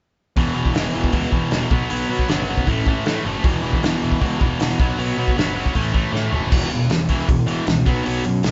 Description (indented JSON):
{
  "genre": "punk rock",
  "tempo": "156 BPM",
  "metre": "4/4",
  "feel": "straight",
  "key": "unclear",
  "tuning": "A4 = 438 Hz",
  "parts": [
    { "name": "sludgy distorted guitar", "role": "riff", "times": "0.4-8.5 s", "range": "E2 to B3", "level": "-23 LUFS", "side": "equal", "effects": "overdrive" },
    { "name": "fuzz picked electric bass", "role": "bass", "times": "0.4-8.5 s", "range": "E1 to B2", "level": "-28 LUFS", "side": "equal", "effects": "overdrive" },
    { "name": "loose indie drum kit", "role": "drums", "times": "0.4-8.5 s", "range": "crash cymbal, hi-hat, kick drum, snare drum, toms", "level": "-23 LUFS", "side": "equal", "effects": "none" }
  ],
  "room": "moderate small room reverb, RT60 0.5 s",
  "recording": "band playing live in one room, nothing above 7.7 kHz",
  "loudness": "-20 LUFS",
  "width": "mono",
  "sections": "0.4-6.5 A section; 6.5-8.5 B section",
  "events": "drum fill 6.1-6.5",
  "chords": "0.4 E5; 1.7 B5; 2.7 A5; 3.4 E5; 4.8 B5; 5.8 A5; 6.5 E5; 7.9 B5"
}